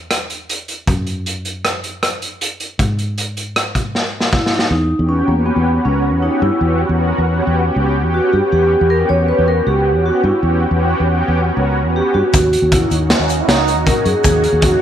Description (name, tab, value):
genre	progressive instrumental, band music in an uneven meter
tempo	157 BPM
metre	5/4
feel	straight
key	unclear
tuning	A4 = 441 Hz
part	fingered electric bass	bass	0.0-14.7 s	C#2 to Ab2	-18 LUFS	equal	none
part	raw garage drum kit	drums	0.1-4.7, 12.3-14.7 s	hi-hat, kick drum, rim click, snare drum	-17 LUFS	equal	none
part	vibraphone with soft mallets	melody	4.3-14.8 s	Bb3 to C#5	-17 LUFS	equal	tape echo
part	analog string pad	accompaniment	5.0-14.8 s	Bb3 to Bb4	-18 LUFS	equal	ensemble chorus
part	egg shaker	percussion	12.3-14.4 s	none	-29 LUFS	left 14 dB	none
part	breathy flugelhorn	second line	13.1-13.8 s	Db4 to Fb4	-20 LUFS	right 8 dB	none
room	moderate plate reverb, RT60 1.0 s, small room ambience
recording	1960s-style stereo with parts hard left and right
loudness	-13 LUFS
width	side -10 dB against mid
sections	0.0-4.7 A section; 4.7-14.8 B section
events	drum fill 3.9-4.7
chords	0.0 N.C.; 2.8 Ab5; 4.7 Em6; 12.3 Ebm7